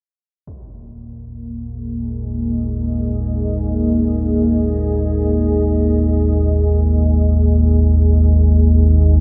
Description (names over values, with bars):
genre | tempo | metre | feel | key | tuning
dark ambient drone | free time | none | none | unclear | A4 = 440 Hz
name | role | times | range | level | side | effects
deep dark ambient pad | sustained chords | 1.3-9.2 s | A#3 to D#5 | -21 LUFS | equal | chorus, built-in reverb
deep rumbling drone | drone | 1.3-9.2 s | G#1 to D#2 | -18 LUFS | equal | built-in reverb
impact | percussion | 0.5-0.7 s | none | -45 LUFS | equal | low-pass filter on sfx
room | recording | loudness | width
wet cathedral reverb, RT60 6.2 s | none | -16 LUFS | mono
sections
0.5-9.2 A section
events
fade-in on impacts and reversed cymbals 0.5-9.2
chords
0.5 G#sus2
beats
free time